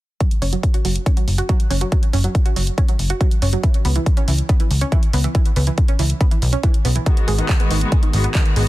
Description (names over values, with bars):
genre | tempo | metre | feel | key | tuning
uplifting trance | 140 BPM | 4/4 | straight | unclear | A4 = 442 Hz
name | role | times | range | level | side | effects
analog pluck | arpeggios | 0.2-8.6 s | D#3 to F#4 | -25 LUFS | right 4 dB | analog chorus, cassette tape, sidechain pumping, digital delay
big-room dance drum kit | drums | 0.2-8.6 s | handclaps, hi-hat | -27 LUFS | right 1 dB | sidechain pumping on hats
electronic kick drum | drums | 0.2-8.4 s | none | -16 LUFS | equal | none
plucky analog bass | bass | 0.4-8.7 s | F#1 to C#2 | -18 LUFS | equal | sidechain pumping
dark symphonic string section | sustained chords | 7.1-8.7 s | D#3 to F#4 | -24 LUFS | left 2 dB | sidechain pumping
room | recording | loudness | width
little or no reverb | dense, heavily limited modern master | -15 LUFS | side -17 dB against mid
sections
0.2-8.7 A section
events
none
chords
0.2 F#5; 3.6 C#m7; 7.1 G#m7